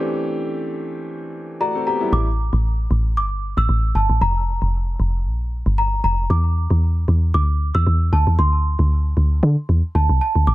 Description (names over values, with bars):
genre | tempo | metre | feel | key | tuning
amapiano | 115 BPM | 4/4 | swing 55% on 16ths | unclear | A4 = 440 Hz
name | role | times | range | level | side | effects
clear concert grand piano | accompaniment | 0.0-2.3 s | E3 to D5 | -24 LUFS | equal | low-pass filter
small celesta | melody | 1.6-10.5 s | A5 to E6 | -24 LUFS | right 1 dB | low-pass filter, ping-pong delay
deep log drum bass | bass | 2.1-10.5 s | F1 to D3 | -17 LUFS | equal | none
room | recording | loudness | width
studio reverb | none | -17 LUFS | side -17 dB against mid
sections
0.0-2.1 A section; 2.1-10.5 B section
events
grand piano fill 1.3-2.1; drop 2.1-10.5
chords
0.0 D9sus4; 2.1 A7sus4; 4.2 Fsus24; 6.3 Dsus2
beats
| 0.04 0.56 1.08 1.60 | 2.13 2.65 3.17 3.69 | 4.21 4.74 5.26 5.78 | 6.30 6.82 7.34 7.87 | 8.39 8.91 9.43 9.95 | 10.47